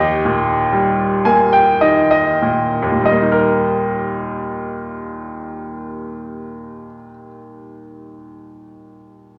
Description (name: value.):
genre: classical, lyrical solo piano.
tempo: 45-66 BPM.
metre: 3/4.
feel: rubato.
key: Eb major.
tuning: A4 = 442 Hz.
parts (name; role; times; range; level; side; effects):
bright upright piano; solo; 0.0-9.4 s; Eb2 to Ab5; -18 LUFS; equal; none.
room: moderate scoring stage reverb, RT60 1.5 s.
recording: none.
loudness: -16 LUFS.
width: mono.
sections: 0.0-3.1 A section; 3.1-6.9 B section.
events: slowing down 0.0-3.1; upright piano fill 0.7-3.1.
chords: 0.0 Eb.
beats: 0.73 1.81 | 3.07 4.36 5.63.